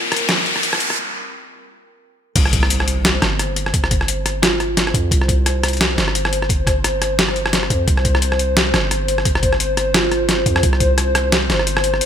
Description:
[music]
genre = half-time drum and bass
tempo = 174 BPM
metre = 4/4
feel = swing 57% on 16ths, half-time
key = unclear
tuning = A4 = 440 Hz
[part]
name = dark analog pad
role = sustained chords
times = 0.0-12.1 s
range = G3 to G5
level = -23 LUFS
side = left 2 dB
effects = chorus, sidechain pumping
[part]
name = long sustained 808-style bass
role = bass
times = 0.0-12.0 s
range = G1 to F2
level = -21 LUFS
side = equal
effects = high-pass filter
[part]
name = riser and impact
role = sound effects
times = 0.0-3.7 s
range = none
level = -23 LUFS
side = left 1 dB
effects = none
[part]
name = boom bap sampler-style drum kit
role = drums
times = 0.1-12.1 s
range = crash cymbal, hi-hat, rim click, snare drum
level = -18 LUFS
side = equal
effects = studio reverb
[part]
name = electronic kick drum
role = drums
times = 2.4-10.9 s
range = none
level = -19 LUFS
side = equal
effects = studio reverb
[part]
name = marimba with soft mallets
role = melody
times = 4.4-4.8, 9.9-10.3 s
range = F4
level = -25 LUFS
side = right 3 dB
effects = dub echo
[sound]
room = light reverb, digital ambience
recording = high-pass filter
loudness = -15 LUFS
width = side -9 dB against mid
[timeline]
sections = 0.0-2.4 A section; 2.4-12.1 B section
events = build-up 0.0-2.4; riser 0.0-1.0; filter sweep on analog synth pad 0.0-2.4; filter sweep 0.0-2.4; break 1.0-2.4; drop 2.4-12.1; impact 2.4-3.7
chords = 0.0 C5

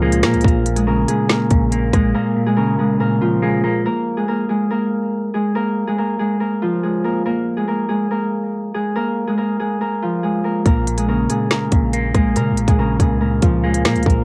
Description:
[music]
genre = hip hop, drill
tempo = 141 BPM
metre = 4/4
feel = half-time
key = Bb minor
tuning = A4 = 441 Hz
[part]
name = Celtic harp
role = melody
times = 0.0-14.2 s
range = F3 to Bb4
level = -21 LUFS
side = equal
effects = low-pass filter, cassette tape, analog delay
[part]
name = clean electric guitar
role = accompaniment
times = 0.0-3.9, 10.7-14.2 s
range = Bb2 to Bb3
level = -23 LUFS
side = equal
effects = low-pass filter, cassette tape
[part]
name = long sustained 808-style bass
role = bass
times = 0.0-2.1, 10.7-14.2 s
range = Bb1 to Db3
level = -24 LUFS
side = equal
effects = none
[part]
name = drill drum kit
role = drums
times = 0.1-2.0, 10.7-14.2 s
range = finger snaps, hi-hat, kick drum, rim click, snare drum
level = -19 LUFS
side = equal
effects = cassette tape
[sound]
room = little or no reverb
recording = home recording on cassette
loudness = -18 LUFS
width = mono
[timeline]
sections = 0.0-3.8 A section; 3.8-14.2 B section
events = none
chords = 0.0 Bbm; 3.8 Bb5; 10.7 Bbm

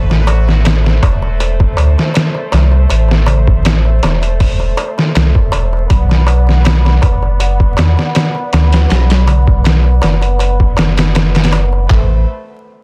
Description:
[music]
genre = trip hop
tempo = 80 BPM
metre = 4/4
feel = straight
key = A dorian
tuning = A4 = 439 Hz
[part]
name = rich chamber violin section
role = sustained chords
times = 0.0-12.3 s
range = A3 to F#5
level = -25 LUFS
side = equal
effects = vintage 12-bit sampler grit, low-pass filter
[part]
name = warm sub bass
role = bass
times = 0.0-12.3 s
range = E1 to E2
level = -14 LUFS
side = equal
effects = none
[part]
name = trip hop sampler-style drum kit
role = drums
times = 0.1-12.1 s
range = handclaps, hi-hat, kick drum, snare drum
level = -16 LUFS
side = equal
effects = none
[part]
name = darbuka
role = percussion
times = 0.1-11.9 s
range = none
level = -26 LUFS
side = equal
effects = none
[sound]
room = studio reverb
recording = dense, heavily limited modern master, vinyl crackle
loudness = -12 LUFS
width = mono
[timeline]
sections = 0.0-11.9 A section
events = filter sweep on violin section 0.0-11.9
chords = 0.0 Am; 5.9 Bm; 11.9 Amadd9

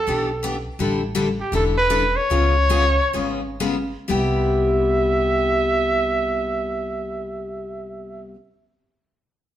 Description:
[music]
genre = acoustic string swing (jazz manouche)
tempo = 116-167 BPM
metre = 4/4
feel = swing 61% on 8ths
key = C major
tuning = A4 = 439 Hz
[part]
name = warm trumpet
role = melody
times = 0.0-8.3 s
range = G4 to E5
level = -22 LUFS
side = right 2 dB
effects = none
[part]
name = picked steel-string acoustic guitar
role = accompaniment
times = 0.1-8.4 s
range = C3 to A4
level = -23 LUFS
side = left 3 dB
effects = none
[part]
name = upright bass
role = bass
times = 0.1-8.3 s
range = E1 to Db2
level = -25 LUFS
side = equal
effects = none
[sound]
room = wet stone room reverb, RT60 1.1 s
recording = band playing live in one room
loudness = -18 LUFS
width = side -11 dB against mid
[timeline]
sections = 0.0-4.1 A section; 4.1-8.2 B section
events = slowing down 0.8-4.1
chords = 0.0 Em7; 0.8 A7sus4; 2.3 Db7; 4.1 Cmaj7

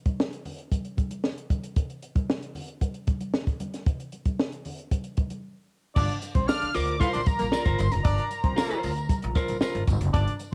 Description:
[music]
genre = funk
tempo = 115 BPM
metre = 4/4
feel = straight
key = G minor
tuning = A4 = 441 Hz
[part]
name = compact cocktail drum kit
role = drums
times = 0.1-10.5 s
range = crash cymbal, hi-hat, kick drum, snare drum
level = -29 LUFS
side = equal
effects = cassette tape
[part]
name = congas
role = percussion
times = 0.1-10.5 s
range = none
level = -40 LUFS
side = equal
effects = none
[part]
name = mellow horn section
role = second line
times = 6.0-10.3 s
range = Bb3 to F5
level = -34 LUFS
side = equal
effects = cassette tape
[part]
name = upright bass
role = bass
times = 6.0-10.2 s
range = F1 to D2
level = -31 LUFS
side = equal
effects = tube saturation
[part]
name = tambourine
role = percussion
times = 6.0-10.5 s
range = none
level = -50 LUFS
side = equal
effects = none
[part]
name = fat analog lead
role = melody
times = 6.5-9.9 s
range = Bb5 to F6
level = -34 LUFS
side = equal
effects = cassette tape
[part]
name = electric guitar at the edge of break-up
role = accompaniment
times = 6.7-9.8 s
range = F4 to D5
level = -33 LUFS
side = equal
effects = cassette tape
[sound]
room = studio reverb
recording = home recording on cassette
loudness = -27 LUFS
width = mono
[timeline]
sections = 0.0-6.0 A section; 6.0-10.5 B section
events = break 5.4-6.0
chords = 0.0 N.C.; 6.0 Gm7

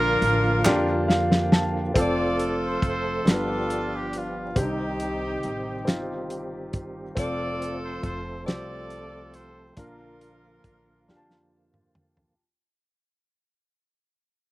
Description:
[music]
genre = slow gospel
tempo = 46 BPM (dotted quarters)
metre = 6/8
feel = straight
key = Bb major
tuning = A4 = 440 Hz
[part]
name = clear horn section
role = melody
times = 0.0-11.5 s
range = C4 to D5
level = -28 LUFS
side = equal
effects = slapback echo
[part]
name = warm concert grand piano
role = accompaniment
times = 0.0-12.4 s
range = G2 to A5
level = -29 LUFS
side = equal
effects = none
[part]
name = tonewheel organ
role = sustained chords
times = 0.0-12.4 s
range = D3 to A4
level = -32 LUFS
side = right 2 dB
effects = chorus vibrato, slow rotary speaker
[part]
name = upright bass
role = bass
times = 0.0-12.3 s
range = F1 to F2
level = -32 LUFS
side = equal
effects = none
[part]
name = warm soul drum kit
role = drums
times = 0.2-12.4 s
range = hi-hat, kick drum, snare drum, toms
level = -22 LUFS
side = equal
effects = none
[part]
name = group handclap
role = percussion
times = 0.6-1.1 s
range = none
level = -28 LUFS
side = right 2 dB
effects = none
[sound]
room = little or no reverb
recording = recorded outdoors, with no room sound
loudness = -23 LUFS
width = side -18 dB against mid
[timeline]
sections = 0.0-2.0 A section; 2.0-12.4 B section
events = drum fill 0.7-2.0, 11.1-12.4; grand piano fill 0.7-2.0; fade-out 2.0-12.4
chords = 0.0 Bb; 2.0 F; 3.3 G7; 4.6 Cm; 7.2 F; 9.8 Bb

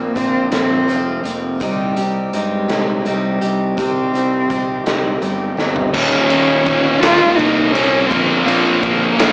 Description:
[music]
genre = quiet-loud alternative rock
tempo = 55 BPM (dotted quarters)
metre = 6/8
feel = straight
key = Eb mixolydian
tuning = A4 = 438 Hz
[part]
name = dark cello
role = melody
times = 0.0-8.9 s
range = G3 to F4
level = -18 LUFS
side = equal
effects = none
[part]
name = picked steel-string acoustic guitar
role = arpeggios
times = 0.0-5.9 s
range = Bb2 to G4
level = -20 LUFS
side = equal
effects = none
[part]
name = fuzz fingered electric bass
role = bass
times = 0.0-9.3 s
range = Eb1 to G2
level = -23 LUFS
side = equal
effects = overdrive
[part]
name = raw garage drum kit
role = drums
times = 0.2-9.3 s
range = crash cymbal, hi-hat, kick drum, ride cymbal, snare drum, toms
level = -20 LUFS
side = equal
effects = none
[part]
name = thick fuzz guitar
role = riff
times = 5.9-9.3 s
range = Eb2 to Bb3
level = -15 LUFS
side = equal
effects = distortion
[sound]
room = moderate large studio reverb, RT60 1.1 s, small room ambience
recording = small speaker sound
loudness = -13 LUFS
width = side -35 dB against mid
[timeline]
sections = 0.0-5.9 A section; 5.9-9.3 B section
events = drum fill 5.6-5.9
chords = 0.0 Bbsus2; 1.6 Cm; 5.9 Eb5; 8.1 Bbsus2

